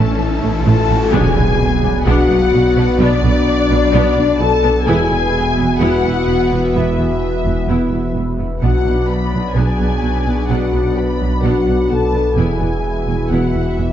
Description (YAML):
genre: cinematic, hybrid orchestral and electronic film score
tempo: 128 BPM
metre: 4/4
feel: straight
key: B dorian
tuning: A4 = 439 Hz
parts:
  - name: warm symphonic violin section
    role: melody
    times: 0.0-13.9 s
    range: D5 to B5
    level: -29 LUFS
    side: left 6 dB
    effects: none
  - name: warm symphonic violin section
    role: second line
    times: 0.0-13.9 s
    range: A4 to B5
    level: -24 LUFS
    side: left 3 dB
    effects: none
  - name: rich symphonic viola section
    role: accompaniment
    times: 0.0-13.9 s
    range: E3 to E4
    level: -24 LUFS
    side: equal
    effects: none
  - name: sweeping resonant pad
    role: sustained chords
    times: 0.0-13.9 s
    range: E3 to E5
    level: -24 LUFS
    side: left 1 dB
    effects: chorus
  - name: phased detuned saw bass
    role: bass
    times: 0.0-13.9 s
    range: E1 to B1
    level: -21 LUFS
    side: equal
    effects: phaser
  - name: rich symphonic cello section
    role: bass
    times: 0.0-13.9 s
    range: E2 to B2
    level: -22 LUFS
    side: right 2 dB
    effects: none
  - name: rich symphonic double bass section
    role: bass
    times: 0.0-13.9 s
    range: E1 to B1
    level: -21 LUFS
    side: right 2 dB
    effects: none
  - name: riser and impact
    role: sound effects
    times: 0.0-3.0 s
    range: none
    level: -22 LUFS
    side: left 1 dB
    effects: none
  - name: dark trombone section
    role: sustained chords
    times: 0.2-13.9 s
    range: B2 to E4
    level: -23 LUFS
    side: right 3 dB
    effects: none
  - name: mellow French horn section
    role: sustained chords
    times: 0.2-13.9 s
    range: C#4 to B4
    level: -19 LUFS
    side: left 4 dB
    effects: none
room: wet recital hall reverb, RT60 1.5 s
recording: dark, warm production, nothing above 7.6 kHz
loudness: -13 LUFS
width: side -10 dB against mid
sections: 0.0-1.1 A section; 1.1-13.9 B section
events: riser 0.0-1.1; impact 1.1-3.0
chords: 0.0 A; 1.1 Bm; 4.9 E; 8.6 Bm; 12.4 E